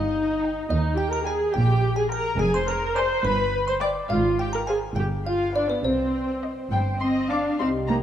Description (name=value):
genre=cinematic, playful, whimsical film cue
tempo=70 BPM (dotted quarters)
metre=6/8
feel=straight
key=C minor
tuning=A4 = 440 Hz
part: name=music box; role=melody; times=0.0-6.7 s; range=B4 to D6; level=-31 LUFS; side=equal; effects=none
part: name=muted studio violin section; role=melody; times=0.0-8.0 s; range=B4 to D6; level=-35 LUFS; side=left 1 dB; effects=none
part: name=muted studio viola section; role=accompaniment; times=0.0-8.0 s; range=B3 to D5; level=-25 LUFS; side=equal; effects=none
part: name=muted studio cello section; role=bass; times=0.0-8.0 s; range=Eb2 to D4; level=-28 LUFS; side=equal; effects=none
part: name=muted studio double bass section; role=bass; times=0.0-8.0 s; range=F1 to Eb2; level=-28 LUFS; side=right 1 dB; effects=none
part: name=muted studio violin section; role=second line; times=0.4-8.0 s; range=B4 to D6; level=-34 LUFS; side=left 3 dB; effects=none
part: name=bright large flute ensemble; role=second line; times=6.7-8.0 s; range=G5 to D6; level=-32 LUFS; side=left 2 dB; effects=none
part: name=mellow French horn section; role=sustained chords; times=7.6-8.0 s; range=G4 to Eb5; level=-29 LUFS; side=left 3 dB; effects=none
room=moderate scoring stage reverb, RT60 1.9 s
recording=dark, warm production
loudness=-21 LUFS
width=side -10 dB against mid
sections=0.0-7.6 A section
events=none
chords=0.0 Eb/G; 0.7 Eb; 2.4 Ddim/F; 3.2 G; 4.1 Fm/Ab; 5.0 G7; 5.8 Cm